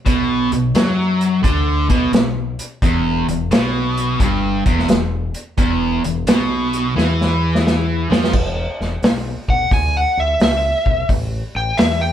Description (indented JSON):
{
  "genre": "blues rock power trio and southern rock",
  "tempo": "87 BPM",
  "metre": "4/4",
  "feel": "swing 67% on 8ths",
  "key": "unclear",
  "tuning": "A4 = 441 Hz",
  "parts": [
    { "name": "overdriven electric guitar", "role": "riff", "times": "0.1-8.3 s", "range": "E2 to F#3", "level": "-18 LUFS", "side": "right 1 dB", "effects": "none" },
    { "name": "growling fingered electric bass", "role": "bass", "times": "0.1-12.1 s", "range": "E1 to F#2", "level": "-23 LUFS", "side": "left 1 dB", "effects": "overdrive" },
    { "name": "vintage drum kit", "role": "drums", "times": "0.1-12.0 s", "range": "crash cymbal, hi-hat, kick drum, snare drum", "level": "-18 LUFS", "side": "equal", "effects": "none" },
    { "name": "overdriven slide guitar", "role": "melody", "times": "9.5-12.1 s", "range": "E5 to G#5", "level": "-18 LUFS", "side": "equal", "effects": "none" }
  ],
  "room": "moderate studio reverb, RT60 0.7 s",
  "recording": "band playing live in one room",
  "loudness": "-15 LUFS",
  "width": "side -10 dB against mid",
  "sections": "0.0-8.3 A section; 8.3-12.1 B section",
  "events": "drum fill 7.0-8.3; electric slide guitar solo 8.3-12.1",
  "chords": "0.0 B5; 2.8 E5; 7.0 N.C.; 8.3 E5; 11.1 A5"
}